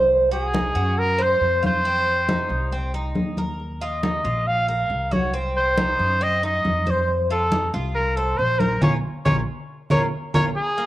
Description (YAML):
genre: latin, Cuban son and guajira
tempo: 138 BPM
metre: 4/4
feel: straight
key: Bb minor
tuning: A4 = 438 Hz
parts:
  - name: Cuban tres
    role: arpeggios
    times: 0.0-10.9 s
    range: Bb3 to C5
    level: -25 LUFS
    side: right 1 dB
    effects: cassette tape
  - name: upright bass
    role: bass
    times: 0.0-10.5 s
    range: Bb1 to Gb2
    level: -26 LUFS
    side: equal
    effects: none
  - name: congas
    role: percussion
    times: 0.1-10.9 s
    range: none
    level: -24 LUFS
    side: equal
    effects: none
  - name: warm trumpet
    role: melody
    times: 0.3-10.9 s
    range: Ab4 to F5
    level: -22 LUFS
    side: equal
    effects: none
room: moderate spring reverb, RT60 1.5 s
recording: home recording on cassette, lossy compression artefacts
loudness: -19 LUFS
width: side -15 dB against mid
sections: 0.0-10.6 A section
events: band accent 8.8-10.6; drum fill 9.9-10.6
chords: 0.1 Cdim; 1.9 F5; 3.6 Ebmadd9; 5.3 Cdim; 7.1 F7; 8.8 Bbm